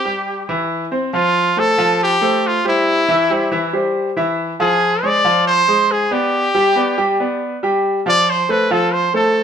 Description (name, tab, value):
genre	latin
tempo	139 BPM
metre	4/4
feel	straight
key	unclear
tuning	A4 = 442 Hz
part	bright trumpet	melody	0.0-9.4 s	E4 to D5	-16 LUFS	equal	none
part	clear concert grand piano	arpeggios	0.1-9.4 s	E3 to G5	-18 LUFS	equal	none
room	wet stone room reverb, RT60 0.9 s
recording	band playing live in one room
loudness	-14 LUFS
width	side -8 dB against mid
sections	0.0-1.1 A section; 1.1-9.4 B section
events	none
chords	0.0 C; 1.1 F; 2.9 C; 4.6 Fm; 6.3 G; 8.1 F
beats	0.27 0.70 | 1.13 1.57 2.00 2.43 | 2.87 3.30 3.73 4.16 | 4.60 5.03 5.46 5.89 | 6.33 6.76 7.19 7.62 | 8.06 8.49 8.92 9.35